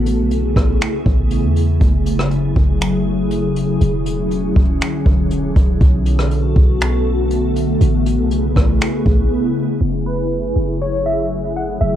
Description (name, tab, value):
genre	hip hop, atmospheric cloud-rap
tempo	120 BPM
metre	4/4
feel	half-time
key	F# minor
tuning	A4 = 440 Hz
part	glassy FM pad	sustained chords	0.0-12.0 s	C#3 to A4	-19 LUFS	left 1 dB	ensemble chorus, built-in reverb, phaser, sidechain pumping, low-pass filter, cassette tape
part	clean 808-style bass	bass	0.0-12.0 s	E1 to E2	-18 LUFS	equal	none
part	jazz brush drum kit	drums	0.1-9.2 s	finger snaps, hi-hat, kick drum, rim click	-17 LUFS	equal	cassette tape
part	glassy wavetable pluck	melody	10.1-12.0 s	B4 to F#5	-21 LUFS	right 1 dB	chorus, low-pass filter, cassette tape, tape echo
room	light reverb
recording	home recording on cassette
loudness	-14 LUFS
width	side -11 dB against mid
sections	0.0-9.8 A section; 9.8-12.0 B section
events	break 9.3-9.8; filter sweep 9.8-12.0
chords	0.0 Amaj9; 1.8 F#m9; 3.8 E13; 5.8 Bm7; 7.8 Amaj9; 9.8 F#m9